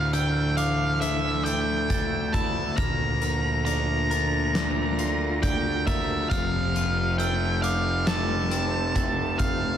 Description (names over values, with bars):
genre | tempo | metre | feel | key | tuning
post-rock | 68 BPM | 4/4 | straight | unclear | A4 = 441 Hz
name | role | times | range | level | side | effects
octave-fuzz lead guitar | melody | 0.0-9.8 s | E5 to Bb5 | -28 LUFS | right 1 dB | distortion, digital delay
shimmering ambient pad | sustained chords | 0.0-9.8 s | C3 to G4 | -35 LUFS | equal | chorus, built-in reverb, phaser
glockenspiel with brass mallets | arpeggios | 0.0-9.8 s | D6 to Bb6 | -38 LUFS | right 4 dB | slapback echo, digital delay
twelve-string electric guitar | arpeggios | 0.0-9.8 s | D2 to Bb4 | -31 LUFS | left 2 dB | digital delay
fuzz fingered electric bass | bass | 0.0-9.8 s | F1 to D2 | -28 LUFS | equal | overdrive
big rock drum kit | drums | 0.1-9.6 s | hi-hat, kick drum, snare drum | -30 LUFS | equal | none
room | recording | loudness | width
moderate lush hall reverb, RT60 2.5 s | big arena sound | -22 LUFS | side -9 dB against mid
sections
0.0-9.8 A section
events
none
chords
0.0 Dmadd9; 2.8 Bb/D; 6.3 Fmaj7